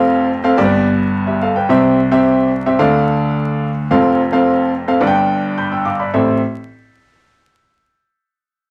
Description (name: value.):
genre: soul.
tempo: 108 BPM.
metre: 4/4.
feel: straight.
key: A minor.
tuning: A4 = 440 Hz.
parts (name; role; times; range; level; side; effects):
clear baby grand piano; accompaniment; 0.0-6.4 s; F1 to G6; -15 LUFS; equal; none.
room: wet studio ambience, RT60 0.5 s.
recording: vinyl crackle.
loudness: -15 LUFS.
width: mono.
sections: 0.0-6.1 A section; 6.1-8.4 B section.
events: none.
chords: 0.0 F; 0.6 G; 1.7 C; 2.8 Dm; 3.9 F; 5.0 G; 6.1 Am.